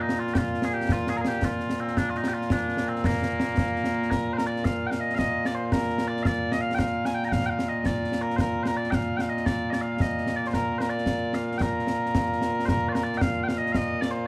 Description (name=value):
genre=scottish traditional, Scottish pipe music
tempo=112 BPM (dotted quarters)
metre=6/8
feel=straight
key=Bb major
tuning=A4 = 440 Hz
part: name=mellow small bagpipes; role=melody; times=0.0-14.3 s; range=Bb2 to Bb5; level=-28 LUFS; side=equal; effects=plate reverb
part: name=concert snare drum and concert bass drum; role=drums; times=0.1-14.1 s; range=none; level=-31 LUFS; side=equal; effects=none
room=moderate small room reverb, RT60 0.5 s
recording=vinyl crackle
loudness=-26 LUFS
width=mono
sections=0.0-4.1 A section; 4.1-12.7 B section; 12.7-14.3 B section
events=none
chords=none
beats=0.36 | 0.89 1.43 | 1.97 2.50 | 3.04 3.57 | 4.11 4.64 | 5.18 5.71 | 6.25 6.79 | 7.32 7.86 | 8.39 8.93 | 9.46 10.00 | 10.54 11.07 | 11.61 12.14 | 12.68 13.21 | 13.75